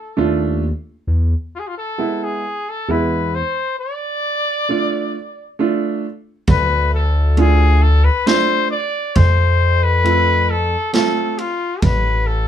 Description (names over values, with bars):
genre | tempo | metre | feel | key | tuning
klezmer | 67 BPM | 3/4 | straight | D dorian sharp4 | A4 = 438 Hz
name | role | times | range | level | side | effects
clear cornet | melody | 0.0-12.5 s | F4 to D5 | -19 LUFS | left 3 dB | none
clear upright piano | accompaniment | 0.2-11.4 s | G#3 to F4 | -19 LUFS | right 5 dB | none
smooth synth bass | bass | 0.2-12.5 s | A1 to F2 | -16 LUFS | equal | none
street-band drum kit | drums | 6.5-12.0 s | kick drum, ride cymbal, snare drum | -17 LUFS | right 2 dB | none
room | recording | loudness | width
moderate small room reverb, RT60 0.6 s | minimal, uncompressed stereo recording | -15 LUFS | side -10 dB against mid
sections
0.0-6.5 A section; 6.5-12.5 B section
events
none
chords
0.0 Dm; 1.1 E; 3.8 Dm; 9.2 F; 11.8 N.C.